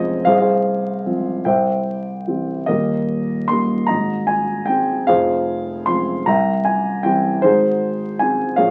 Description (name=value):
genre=classical, lyrical solo piano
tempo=50 BPM (dotted quarters)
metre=6/8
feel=uneven beats, rubato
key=F minor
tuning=A4 = 440 Hz
part: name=dark concert grand piano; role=solo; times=0.0-8.7 s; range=Eb1 to C6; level=-19 LUFS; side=equal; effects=none
room=moderate studio reverb, RT60 0.5 s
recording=very old 78 rpm record, vinyl crackle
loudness=-19 LUFS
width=mono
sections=0.0-8.7 A section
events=none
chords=0.3 Fm/C; 1.5 C; 2.7 Eb; 3.9 Ab; 5.1 Fm; 6.3 C; 7.4 Ab